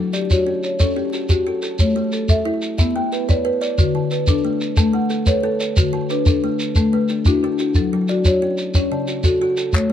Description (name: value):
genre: southern african traditional, mbira-style interlocking cycle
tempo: 121 BPM (dotted quarters)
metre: 12/8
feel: straight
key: unclear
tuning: A4 = 440 Hz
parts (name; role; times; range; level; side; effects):
- kalimba; arpeggios; 0.0-9.9 s; C#3 to E5; -24 LUFS; right 4 dB; slapback echo
- marimba with soft mallets; arpeggios; 0.0-9.9 s; D3 to G5; -20 LUFS; left 4 dB; none
- shekere; percussion; 0.1-9.9 s; none; -18 LUFS; equal; none
- group handclap; percussion; 9.8-9.9 s; none; -25 LUFS; left 4 dB; none
room: moderate spring reverb, RT60 1.6 s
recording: dark, warm production, vinyl crackle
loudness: -16 LUFS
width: side -10 dB against mid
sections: 0.0-1.8 A section; 1.8-9.9 B section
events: none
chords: 0.0 F#m; 1.8 A; 2.8 Bm; 3.8 D; 4.8 A; 5.8 D; 7.8 F#m